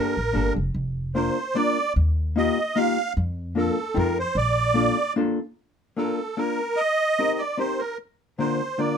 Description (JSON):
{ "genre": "musette waltz", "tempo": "149 BPM", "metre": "3/4", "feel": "straight", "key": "Bb major", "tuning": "A4 = 440 Hz", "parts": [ { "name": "musette accordion", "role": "melody", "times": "0.0-9.0 s", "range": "A4 to F5", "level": "-24 LUFS", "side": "right 3 dB", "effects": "none" }, { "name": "hollow-body jazz guitar", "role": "accompaniment", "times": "0.0-9.0 s", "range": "D3 to Bb4", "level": "-24 LUFS", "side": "left 3 dB", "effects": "none" }, { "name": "upright bass", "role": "bass", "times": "0.2-4.9 s", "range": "F1 to F2", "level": "-25 LUFS", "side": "equal", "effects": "none" } ], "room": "light reverb", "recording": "minimal, uncompressed stereo recording", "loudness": "-22 LUFS", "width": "side -7 dB against mid", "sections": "0.0-5.6 A section; 5.6-9.0 A section", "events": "none", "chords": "0.0 Gmadd9; 0.7 Bb/F; 2.0 Ebadd9; 3.2 Bb/F; 4.0 F7; 4.3 Bbmaj7; 5.6 Bb; 6.8 Eb6; 8.0 Bb/D" }